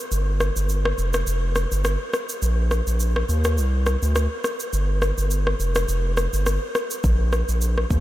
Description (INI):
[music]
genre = afrobeats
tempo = 104 BPM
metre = 4/4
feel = swing 55% on 16ths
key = unclear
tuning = A4 = 440 Hz
[part]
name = round analog bass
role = bass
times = 0.1-8.0 s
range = F1 to Eb2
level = -21 LUFS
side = equal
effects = none
[part]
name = afro-pop drum kit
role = drums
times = 0.1-8.0 s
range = kick drum, rim click, shaker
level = -25 LUFS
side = equal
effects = none
[sound]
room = moderate huge ambient reverb, RT60 8.1 s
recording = dreamy mix soaked in reverb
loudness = -20 LUFS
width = side -15 dB against mid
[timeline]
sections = 0.0-8.0 A section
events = none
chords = none